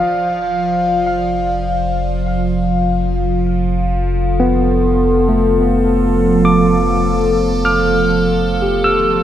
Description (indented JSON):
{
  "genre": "ambient",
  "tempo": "free time",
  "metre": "none",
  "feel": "none",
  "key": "F lydian",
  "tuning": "A4 = 444 Hz",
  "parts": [
    { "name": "evolving wavetable pad", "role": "sustained chords", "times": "0.0-9.2 s", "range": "F3 to F5", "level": "-16 LUFS", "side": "equal", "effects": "phaser, built-in reverb" },
    { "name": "barky tine electric piano", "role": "arpeggios", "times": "0.0-9.2 s", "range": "A3 to F6", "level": "-17 LUFS", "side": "equal", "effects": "tape echo" },
    { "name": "warm sub bass", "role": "bass", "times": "0.0-9.2 s", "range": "F1", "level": "-20 LUFS", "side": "equal", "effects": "none" }
  ],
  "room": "wet huge ambient reverb, RT60 8.1 s",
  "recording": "in a vast, echoing space",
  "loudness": "-13 LUFS",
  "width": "side -11 dB against mid",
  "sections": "0.0-9.2 A section",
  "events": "none",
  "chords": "0.1 F"
}